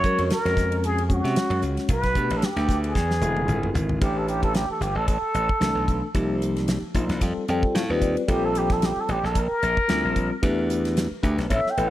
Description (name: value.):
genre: electric jazz fusion.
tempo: 112 BPM.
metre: 4/4.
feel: swing 55% on 16ths.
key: unclear.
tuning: A4 = 440 Hz.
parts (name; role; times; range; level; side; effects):
trumpet with plunger mute; melody; 0.0-11.9 s; F#4 to G5; -26 LUFS; right 1 dB; none.
tine electric piano; accompaniment; 0.0-11.9 s; D3 to G5; -27 LUFS; left 2 dB; medium stereo tremolo, phaser.
glassy slap bass; bass; 0.0-11.9 s; E1 to F#3; -26 LUFS; equal; none.
damped 70s drum kit; drums; 0.0-11.9 s; hi-hat, kick drum, ride cymbal, snare drum, toms; -26 LUFS; equal; none.
room: light reverb, studio reverb.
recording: none.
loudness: -21 LUFS.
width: side -14 dB against mid.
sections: 0.0-4.0 A section; 4.0-11.9 B section.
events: drum fill 3.0-4.0; muted trumpet solo 4.0-11.9; tine electric piano fill 7.2-8.3.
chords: 0.0 F#maj9; 1.9 A9sus4; 3.0 E7alt; 4.0 A7(no3); 6.2 Cm7; 7.2 F9; 8.3 Bbmaj7sus2; 10.4 Em7.